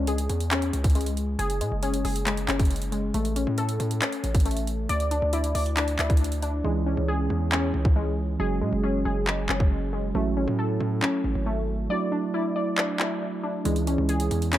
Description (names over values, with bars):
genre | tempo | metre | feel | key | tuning
hip hop, trap | 137 BPM | 4/4 | half-time | C# phrygian | A4 = 440 Hz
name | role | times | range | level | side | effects
warbly dusty pluck | arpeggios | 0.0-14.6 s | G#3 to D5 | -28 LUFS | left 2 dB | chorus, analog delay
hard-hitting 808-style bass | bass | 0.0-14.6 s | F#1 to A2 | -27 LUFS | equal | none
trap drum kit | drums | 0.1-14.6 s | handclaps, hi-hat, kick drum | -26 LUFS | equal | none
mellow tine electric piano | accompaniment | 6.6-14.6 s | E3 to G#4 | -29 LUFS | right 6 dB | wide subtle chorus
room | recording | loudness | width
light reverb | echo-heavy mix | -23 LUFS | side -13 dB against mid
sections
0.0-14.6 A section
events
hi-hats muted 6.6-13.7; kick muted 11.9-13.7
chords
0.0 C#m; 1.4 F#sus2; 3.1 A; 4.9 Dsus2; 6.6 C#m; 8.4 F#sus2; 10.1 A6; 11.9 Dadd9; 13.7 C#m